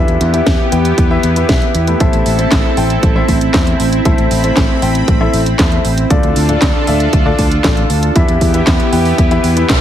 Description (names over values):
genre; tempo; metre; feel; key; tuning
italo disco; 117 BPM; 4/4; straight; A minor; A4 = 440 Hz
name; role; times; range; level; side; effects
lush unison pad; sustained chords; 0.0-9.8 s; B3 to B5; -17 LUFS; right 1 dB; chorus
warm grand piano; stabs; 0.0-9.8 s; D3 to G5; -18 LUFS; left 3 dB; tape echo
modern bright fingered electric bass; bass; 0.0-9.8 s; A1 to E2; -16 LUFS; equal; none
house drum kit; drums; 0.1-9.8 s; handclaps, hi-hat, snare drum; -18 LUFS; equal; overdrive
electronic kick drum; drums; 0.5-9.8 s; none; -14 LUFS; equal; overdrive
room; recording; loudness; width
light reverb, digital ambience; heavily compressed radio sound; -10 LUFS; side -10 dB against mid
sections
0.0-9.8 A section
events
none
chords
0.0 Em; 2.0 Am; 6.1 Dm; 8.2 Em